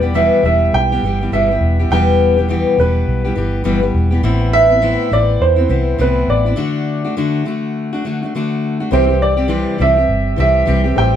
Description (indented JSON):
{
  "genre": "acoustic pop",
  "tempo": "103 BPM",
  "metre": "4/4",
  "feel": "swing 60% on 16ths",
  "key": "E minor",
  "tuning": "A4 = 440 Hz",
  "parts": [
    { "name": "warm upright piano", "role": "melody", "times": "0.0-11.2 s", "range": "B4 to G5", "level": "-16 LUFS", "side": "right 3 dB", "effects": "none" },
    { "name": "fingerpicked steel-string acoustic guitar", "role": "accompaniment", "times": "0.0-11.1 s", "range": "E2 to G4", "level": "-17 LUFS", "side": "left 3 dB", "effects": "none" },
    { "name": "vintage muted fingered electric bass", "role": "bass", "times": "0.0-11.2 s", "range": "E1 to E2", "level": "-16 LUFS", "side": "equal", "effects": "none" },
    { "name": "felt-muted upright piano", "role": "accompaniment", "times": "8.9-11.2 s", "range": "C4 to E5", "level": "-24 LUFS", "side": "left 5 dB", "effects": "none" }
  ],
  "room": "moderate studio ambience, RT60 0.4 s",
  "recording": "band playing live in one room",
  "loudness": "-13 LUFS",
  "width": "side -9 dB against mid",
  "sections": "0.0-8.9 A section; 8.9-11.2 B section",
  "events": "break 6.6-8.9",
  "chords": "0.0 Em; 4.2 Amadd9; 6.6 D; 8.9 C"
}